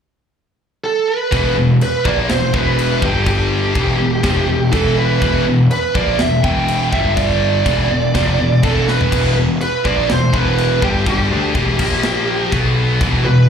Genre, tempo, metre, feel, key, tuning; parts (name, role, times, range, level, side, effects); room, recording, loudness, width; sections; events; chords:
heavy metal; 123 BPM; 4/4; straight; E minor; A4 = 440 Hz
high-gain lead guitar; melody; 0.8-13.5 s; G4 to G5; -19 LUFS; right 3 dB; distortion, slapback echo, tape echo
heavy high-gain guitar; riff; 1.3-13.5 s; E2 to D4; -17 LUFS; left 1 dB; distortion, slapback echo
fuzz picked electric bass; bass; 1.3-13.5 s; E1 to D2; -18 LUFS; equal; overdrive
tight metal drum kit; drums; 1.3-13.1 s; crash cymbal, kick drum, snare drum, toms; -22 LUFS; left 1 dB
studio ambience; live gig heard through the venue's PA, club reverb; -13 LUFS; side -7 dB against mid
0.0-1.3 A section; 1.3-13.5 B section
drum fill 8.9
0.0 N.C.; 1.3 E5; 3.0 G5; 3.8 Em; 6.9 G5; 7.7 Em; 11.8 A#5; 12.5 B5